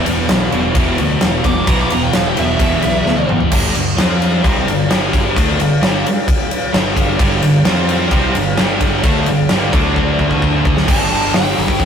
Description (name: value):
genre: hard rock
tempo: 130 BPM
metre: 4/4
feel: straight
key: unclear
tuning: A4 = 440 Hz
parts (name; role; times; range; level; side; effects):
- high-gain distorted guitar; riff; 0.0-3.5, 7.2-10.9 s; E2 to F4; -22 LUFS; right 4 dB; distortion
- overdriven electric guitar; riff; 0.0-11.8 s; E2 to F4; -22 LUFS; left 3 dB; none
- scooped high-gain guitar; riff; 0.0-11.8 s; E2 to F4; -20 LUFS; equal; distortion
- growling picked electric bass; bass; 0.1-11.8 s; E1 to F2; -20 LUFS; equal; overdrive
- huge arena drum kit; drums; 0.1-11.8 s; crash cymbal, hi-hat, kick drum, ride cymbal, snare drum, toms; -15 LUFS; equal; none
- high-gain lead guitar; melody; 1.5-3.3, 10.9-11.8 s; E5 to D6; -20 LUFS; right 2 dB; distortion
room: light reverb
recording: rough rehearsal-room recording, warm saturation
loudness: -12 LUFS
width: side -7 dB against mid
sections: 0.0-3.5 A section; 3.5-10.9 B section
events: lead electric guitar solo 0.0-3.5; drum fill 3.1-3.5, 10.0-10.9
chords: 0.0 E5; 3.5 G5; 4.0 F5; 4.4 G5; 7.7 F5; 8.1 G5; 9.7 D5; 10.9 G5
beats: 0.29 0.75 1.22 | 1.68 2.14 2.60 3.06 | 3.52 3.98 4.44 4.90 | 5.37 5.83 6.29 6.75 | 7.21 7.67 8.13 8.59 | 9.05 9.51 9.97 10.43 | 10.89 11.35 11.81